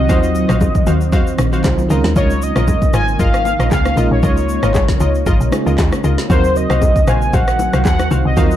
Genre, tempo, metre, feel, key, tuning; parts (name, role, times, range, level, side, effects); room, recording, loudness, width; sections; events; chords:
amapiano; 116 BPM; 4/4; swing 55% on 16ths; Eb dorian; A4 = 440 Hz
warm velvety synth lead; melody; 0.0-8.6 s; C5 to Ab5; -20 LUFS; left 1 dB; chorus, tape echo
FM electric piano with tremolo; accompaniment; 0.0-8.6 s; Gb3 to C5; -22 LUFS; right 3 dB
ethereal airy pad; sustained chords; 0.0-8.6 s; Db3 to Eb4; -23 LUFS; equal; ensemble chorus, built-in reverb, sidechain pumping
woody log drum bass; bass; 0.0-8.6 s; Ab1 to Eb2; -17 LUFS; equal
glassy wavetable pluck; stabs; 0.1-8.6 s; F4 to F5; -24 LUFS; left 2 dB; chorus, tape echo
deep house drum kit; drums; 0.1-8.6 s; handclaps, kick drum, rim click, shaker, snare drum; -17 LUFS; equal
congas and bongos; percussion; 0.1-8.5 s; -25 LUFS; left 4 dB
light reverb; dark, warm production; -12 LUFS; side -11 dB against mid
0.0-8.6 A section
0.0 Ebm69; 1.9 Db69; 6.3 Ebm69